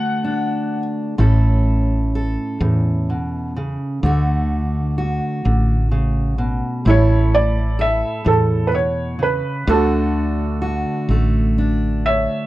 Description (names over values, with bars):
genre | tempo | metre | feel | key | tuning
folk | 42 BPM (dotted quarters) | 6/8 | straight | unclear | A4 = 440 Hz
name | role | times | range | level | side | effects
felt-muted upright piano | melody | 0.0-0.8, 6.9-12.5 s | E4 to F#5 | -20 LUFS | right 2 dB | none
fingerpicked steel-string acoustic guitar | accompaniment | 0.0-12.5 s | A2 to A4 | -20 LUFS | equal | none
woody fretless electric bass | bass | 1.2-12.3 s | A1 to E2 | -19 LUFS | equal | none
room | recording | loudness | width
light reverb | none | -16 LUFS | side -16 dB against mid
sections
0.0-12.5 A section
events
none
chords
0.0 D; 1.2 Aadd9; 4.0 D; 6.9 Aadd9; 9.7 D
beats
| 1.20 2.62 | 4.04 5.45 | 6.86 8.26 | 9.67 11.09